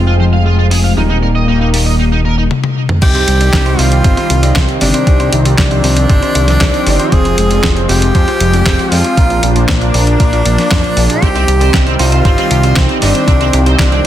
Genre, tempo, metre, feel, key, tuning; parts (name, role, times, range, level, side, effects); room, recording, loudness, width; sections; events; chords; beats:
synthwave; 117 BPM; 4/4; straight; C minor; A4 = 441 Hz
warm analog pad; sustained chords; 0.0-14.1 s; Eb3 to D4; -19 LUFS; left 1 dB; chorus, sidechain pumping, shimmer reverb
mellow electric guitar; arpeggios; 0.0-11.2 s; Bb2 to C5; -22 LUFS; left 5 dB; digital delay, shimmer reverb
clear baby grand piano; stabs; 0.0-14.1 s; Bb3 to D5; -20 LUFS; right 4 dB; digital delay, shimmer reverb
fat analog bass; bass; 0.0-14.0 s; Eb1 to F2; -13 LUFS; equal; sidechain pumping
overdriven electric guitar; riff; 0.1-2.4, 11.2-14.0 s; C4 to F5; -21 LUFS; right 2 dB; analog chorus, digital delay, shimmer reverb
clean 12-bit digital drum machine; drums; 0.7-14.0 s; crash cymbal, handclaps, hi-hat, snare drum, toms; -17 LUFS; left 1 dB
breathy tenor saxophone; melody; 3.0-14.1 s; D4 to Ab4; -16 LUFS; equal; ping-pong delay, shimmer reverb
electronic kick drum; drums; 3.0-13.9 s; -13 LUFS; equal
light reverb, digital ambience; dense, heavily limited modern master; -9 LUFS; side -12 dB against mid
0.0-3.0 A section; 3.0-14.1 B section
filter sweep on drum 0.0-3.0; filter sweep on analog synth pad 0.0-3.0; filter sweep on clean electric guitar 0.0-3.0; drum fill 2.5-3.0
0.0 Fm; 1.0 Eb; 3.0 Cm; 7.1 Fm; 9.2 Bb; 11.2 Cm
0.46 | 0.97 1.48 2.00 2.51 | 3.02 3.53 4.05 4.56 | 5.07 5.58 6.10 6.61 | 7.12 7.64 8.15 8.66 | 9.17 9.69 10.20 10.71 | 11.22 11.74 12.25 12.76 | 13.28 13.79